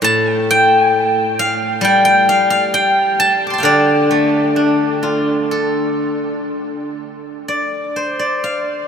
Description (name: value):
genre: chinese traditional, Chinese solo plucked strings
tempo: 60-67 BPM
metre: 4/4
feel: rubato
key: D yu mode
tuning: A4 = 440 Hz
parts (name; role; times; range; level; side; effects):
- steel-string zither; solo; 0.0-8.9 s; A2 to D6; -13 LUFS; equal; none
room: wet huge ambient reverb, RT60 7.6 s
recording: in a vast, echoing space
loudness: -13 LUFS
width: side -7 dB against mid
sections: 0.0-7.5 A section; 7.5-8.9 B section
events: none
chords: none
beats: | 0.02 0.92 1.82 2.74 | 3.65 4.55 5.50 6.50 | 7.48 8.44